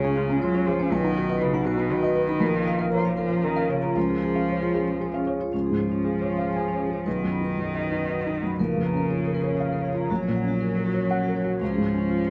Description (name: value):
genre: neoclassical piano and strings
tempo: 119 BPM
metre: 3/4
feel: rubato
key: Db mixolydian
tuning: A4 = 437 Hz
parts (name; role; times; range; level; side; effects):
- clear cello; second line; 0.0-12.3 s; Cb3 to Gb3; -31 LUFS; equal; none
- felt-muted upright piano; accompaniment; 0.0-12.3 s; Bb1 to Ab5; -27 LUFS; equal; none
- dark analog pad; sustained chords; 0.2-12.3 s; Db4 to Db5; -35 LUFS; equal; chorus, phaser
- vibraphone with medium hard mallets; arpeggios; 0.0-12.2 s; Db4 to Cb6; -34 LUFS; equal; tape echo
room: light reverb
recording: dark, warm production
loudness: -25 LUFS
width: mono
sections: 0.0-5.5 A section; 5.5-12.3 B section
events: none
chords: 0.0 Db; 0.9 Cb; 2.4 Bbm; 4.0 Db; 7.1 Cb; 8.6 Bbm; 10.1 Gb/Bb; 11.6 Db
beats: 0.41 | 0.91 1.42 1.91 | 2.41 2.92 3.43 | 3.96 4.48 5.01 | 5.53 6.04 6.54 | 7.06 7.57 8.08 | 8.58 9.09 9.59 | 10.10 10.60 11.10 | 11.61 12.11